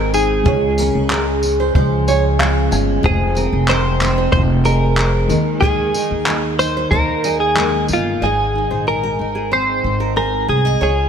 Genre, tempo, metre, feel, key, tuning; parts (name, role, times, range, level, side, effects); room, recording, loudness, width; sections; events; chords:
acoustic pop; 93 BPM; 4/4; straight; Ab major; A4 = 438 Hz
direct-recorded clean electric guitar; melody; 0.0-11.1 s; F4 to C5; -19 LUFS; equal; analog chorus
felt-muted upright piano; accompaniment; 0.0-8.2 s; Ab3 to Ab5; -27 LUFS; left 5 dB; ensemble chorus
picked steel-string acoustic guitar; accompaniment; 0.0-11.1 s; F2 to Ab4; -20 LUFS; right 1 dB; double-tracked left and right
upright bass; bass; 0.0-11.1 s; F1 to Eb2; -20 LUFS; equal
compact cocktail drum kit; drums; 0.1-8.0 s; handclaps, kick drum, tambourine; -20 LUFS; equal
nylon-string guitar; arpeggios; 0.5-11.0 s; Ab4 to Eb5; -25 LUFS; right 6 dB; lush chorus
light reverb, studio reverb; bright 1980s-style digital production; -14 LUFS; side -7 dB against mid
0.0-8.2 A section; 8.2-11.1 B section
felt piano fill 2.1-3.0
0.5 Db; 3.0 Fm; 5.3 Ebsus4; 8.2 Ab